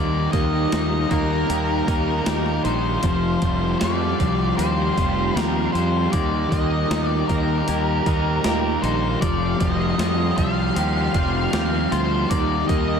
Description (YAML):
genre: rock, shoegaze and dream pop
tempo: 78 BPM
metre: 4/4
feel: straight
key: unclear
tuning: A4 = 438 Hz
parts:
  - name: octave-fuzz lead guitar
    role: melody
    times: 0.0-13.0 s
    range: Bb4 to F5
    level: -27 LUFS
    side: left 2 dB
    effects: distortion, diffuse ambient delay
  - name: ensemble organ-string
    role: sustained chords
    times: 0.0-13.0 s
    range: Eb4 to C6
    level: -28 LUFS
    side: equal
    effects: ensemble chorus
  - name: semi-hollow electric guitar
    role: arpeggios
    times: 0.0-13.0 s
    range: F3 to G4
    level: -33 LUFS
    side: left 9 dB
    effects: wide subtle chorus, diffuse ambient delay
  - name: raw garage guitar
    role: riff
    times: 0.0-13.0 s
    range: Eb3 to G4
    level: -27 LUFS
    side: right 12 dB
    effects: overdrive, reverse reverb
  - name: thick fuzz guitar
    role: riff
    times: 0.0-13.0 s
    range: Eb3 to C4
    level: -27 LUFS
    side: left 9 dB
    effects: distortion, wide subtle chorus
  - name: fuzz fingered electric bass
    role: bass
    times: 0.0-13.0 s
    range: F1 to F2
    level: -24 LUFS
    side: equal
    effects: overdrive
  - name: clean 12-bit digital drum machine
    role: drums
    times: 0.3-12.9 s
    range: hi-hat, kick drum, snare drum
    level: -26 LUFS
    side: right 1 dB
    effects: overdrive
room: moderate plate reverb, RT60 2.8 s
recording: dreamy mix soaked in reverb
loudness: -18 LUFS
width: side -7 dB against mid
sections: 0.0-13.0 A section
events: none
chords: 0.0 Eb; 3.0 Fsus2; 6.1 Eb; 9.2 Fsus2; 12.3 Eb